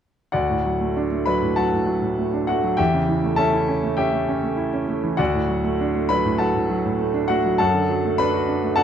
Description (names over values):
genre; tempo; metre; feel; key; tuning
classical, virtuoso piano study; 100 BPM; 4/4; rubato; D major; A4 = 440 Hz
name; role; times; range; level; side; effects
clear grand piano; solo; 0.3-8.8 s; D2 to B5; -19 LUFS; equal; none
room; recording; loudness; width
light reverb; close, detailed microphones; -19 LUFS; side -8 dB against mid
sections
0.3-8.8 A section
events
none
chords
0.3 D; 2.8 A7/E; 5.2 D; 7.6 D/F#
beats
| 0.34 0.96 1.57 2.18 | 2.79 3.40 3.99 4.59 | 5.20 5.80 6.40 7.00 | 7.59 8.19 8.78